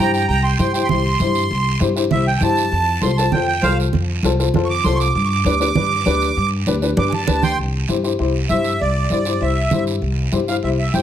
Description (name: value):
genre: latin, cumbia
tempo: 197 BPM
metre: 4/4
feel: straight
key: C major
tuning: A4 = 440 Hz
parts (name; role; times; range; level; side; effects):
- accordion; melody; 0.0-11.0 s; C5 to D6; -20 LUFS; right 4 dB; light tremolo tuning
- dark upright piano; accompaniment; 0.0-11.0 s; D4 to C5; -22 LUFS; left 5 dB; none
- upright bass; bass; 0.0-11.0 s; C2 to G2; -20 LUFS; equal; none
- guiro; percussion; 0.1-11.0 s; none; -30 LUFS; right 7 dB; none
- congas; percussion; 0.3-11.0 s; none; -24 LUFS; right 3 dB; none
room: moderate large studio reverb, RT60 1.4 s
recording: close, detailed microphones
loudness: -16 LUFS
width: side -10 dB against mid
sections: 0.0-7.6 A section; 7.6-11.0 B section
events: accordion solo 0.0-7.6; drum fill 7.0-7.6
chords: 0.0 C; 2.7 F; 5.2 G; 7.6 C